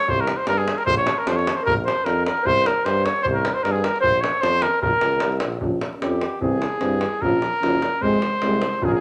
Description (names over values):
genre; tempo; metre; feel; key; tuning
balkan folk, Balkan brass band; 151 BPM; 2/4; swing 54% on 16ths; Bb dorian sharp4; A4 = 441 Hz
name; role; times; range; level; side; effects
clear trumpet; melody; 0.0-9.0 s; G4 to Db5; -24 LUFS; equal; none
warm tuba; bass; 0.1-9.0 s; F1 to G2; -29 LUFS; equal; none
davul; percussion; 0.1-8.9 s; none; -29 LUFS; equal; none
dark clarinet; second line; 1.6-5.4 s; Ab4 to Db5; -28 LUFS; equal; none
mellow euphonium; accompaniment; 5.6-9.0 s; C4 to Db4; -31 LUFS; equal; none
mellow euphonium; accompaniment; 5.6-9.0 s; E3 to Ab3; -27 LUFS; equal; none
room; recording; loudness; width
moderate large studio reverb, RT60 0.9 s; none; -21 LUFS; mono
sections
0.0-5.6 A section; 5.6-9.0 B section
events
trumpet solo 5.6-9.0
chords
0.0 C5; 0.9 Bb5; 2.4 C5; 4.0 Bbm; 6.4 C; 7.2 Bbm; 8.0 Fm